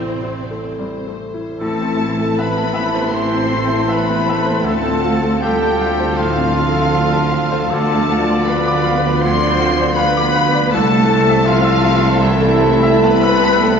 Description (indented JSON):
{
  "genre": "classical, romantic movement for piano and orchestra",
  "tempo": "79 BPM",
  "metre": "4/4",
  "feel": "rubato",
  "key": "A minor",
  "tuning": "A4 = 442 Hz",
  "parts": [
    { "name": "clear grand piano", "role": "melody", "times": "0.0-13.8 s", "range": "C2 to E6", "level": "-20 LUFS", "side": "left 1 dB", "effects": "none" },
    { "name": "warm symphonic violin section", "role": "melody", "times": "0.0-13.8 s", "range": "C5 to C6", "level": "-24 LUFS", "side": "left 5 dB", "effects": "none" },
    { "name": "warm symphonic violin section", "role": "second line", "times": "0.0-13.8 s", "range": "B3 to C5", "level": "-27 LUFS", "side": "left 3 dB", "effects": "none" },
    { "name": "warm symphonic viola section", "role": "accompaniment", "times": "0.0-13.8 s", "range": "D3 to C4", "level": "-25 LUFS", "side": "right 3 dB", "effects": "none" },
    { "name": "warm studio double bass section", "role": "bass", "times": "0.0-13.8 s", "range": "A1 to D2", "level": "-26 LUFS", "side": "right 2 dB", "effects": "none" },
    { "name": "warm symphonic cello section", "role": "bass", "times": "0.0-13.8 s", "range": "C3 to C4", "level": "-23 LUFS", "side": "right 2 dB", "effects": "none" },
    { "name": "mellow cor anglais", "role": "second line", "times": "1.6-13.8 s", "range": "E4 to C5", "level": "-24 LUFS", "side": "right 1 dB", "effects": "none" },
    { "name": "small flute group", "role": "second line", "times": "1.6-13.8 s", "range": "E4 to C5", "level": "-23 LUFS", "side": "left 3 dB", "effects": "none" },
    { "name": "dark French horn section", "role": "sustained chords", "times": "1.6-13.7 s", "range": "B3 to F4", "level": "-25 LUFS", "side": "left 5 dB", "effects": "none" },
    { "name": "warm trombone section", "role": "sustained chords", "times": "1.6-13.7 s", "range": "C3 to A3", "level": "-26 LUFS", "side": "right 3 dB", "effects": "none" },
    { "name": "clear trumpet", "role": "stabs", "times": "1.6-13.8 s", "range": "A4 to D5", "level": "-26 LUFS", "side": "right 4 dB", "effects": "none" },
    { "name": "mellow tuba", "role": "bass", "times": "1.6-13.8 s", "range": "A1 to D2", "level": "-23 LUFS", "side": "right 2 dB", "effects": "none" }
  ],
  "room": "wet concert hall reverb, RT60 2.4 s",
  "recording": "recorded in a church or concert hall, nothing above 7.5 kHz",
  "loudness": "-13 LUFS",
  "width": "side -6 dB against mid",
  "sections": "0.0-1.6 A section; 1.6-13.8 B section",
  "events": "none",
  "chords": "0.0 Am; 4.7 Dm7; 7.7 Bdim/D; 10.7 Am/C"
}